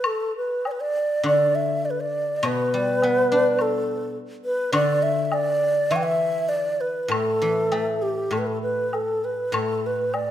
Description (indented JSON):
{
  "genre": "chinese traditional, Chinese chamber ensemble",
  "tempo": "100 BPM",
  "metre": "4/4",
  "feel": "rubato",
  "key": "D zhi mode",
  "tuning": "A4 = 440 Hz",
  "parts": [
    { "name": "mellow xiao", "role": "melody", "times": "0.0-10.3 s", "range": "G4 to G5", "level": "-22 LUFS", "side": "equal", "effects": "none" },
    { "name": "guzheng", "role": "accompaniment", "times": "0.0-10.3 s", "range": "A2 to D4", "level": "-26 LUFS", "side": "left 1 dB", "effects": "none" },
    { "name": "woodblock", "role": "percussion", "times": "0.0-10.3 s", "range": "none", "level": "-31 LUFS", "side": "left 2 dB", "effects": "none" }
  ],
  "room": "moderate concert hall reverb, RT60 1.8 s",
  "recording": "minimal, uncompressed stereo recording",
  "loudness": "-20 LUFS",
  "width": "side -11 dB against mid",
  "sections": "0.0-10.3 A section",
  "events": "none",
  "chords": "none"
}